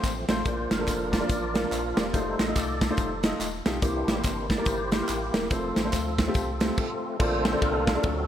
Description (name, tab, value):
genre	uptempo gospel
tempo	142 BPM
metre	4/4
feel	swing 60% on 8ths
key	Bb major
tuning	A4 = 440 Hz
part	warm upright piano	accompaniment	0.0-8.3 s	Bb2 to F5	-30 LUFS	left 1 dB	none
part	tonewheel organ	sustained chords	0.0-8.3 s	D3 to Eb5	-30 LUFS	equal	fast rotary speaker, overdrive, chorus vibrato
part	warm sub bass	bass	0.0-8.3 s	Eb1 to D2	-34 LUFS	equal	none
part	modern studio drum kit	drums	0.0-8.2 s	crash cymbal, hi-hat, kick drum, ride cymbal, snare drum	-27 LUFS	right 1 dB	gated reverb
part	handclaps and tambourine	percussion	0.0-6.7 s	none	-40 LUFS	equal	none
room	moderate lush hall reverb, RT60 1.9 s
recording	bright 1980s-style digital production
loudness	-24 LUFS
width	side -10 dB against mid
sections	0.0-7.2 A section; 7.2-8.3 B section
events	tonewheel organ solo 0.0-7.2, 7.2-8.3; stop 6.8-7.2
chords	0.5 Bb; 2.1 F7; 3.8 C7; 5.5 F; 7.2 Bbmaj7